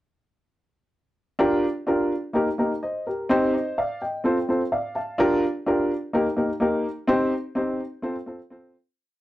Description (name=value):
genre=soul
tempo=127 BPM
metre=4/4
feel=straight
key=Bb major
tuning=A4 = 440 Hz
part: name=dark upright piano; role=solo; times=1.4-8.8 s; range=Bb3 to A5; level=-22 LUFS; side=equal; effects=none
room=moderate studio ambience, RT60 0.5 s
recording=nothing above 11.0 kHz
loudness=-22 LUFS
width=side -15 dB against mid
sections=1.4-9.0 verse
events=fade-out 7.1-9.0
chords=1.4 Bb6; 2.4 Eb; 3.3 Cm; 4.2 F; 5.2 Bb6; 6.1 Eb; 7.1 Cm; 8.0 F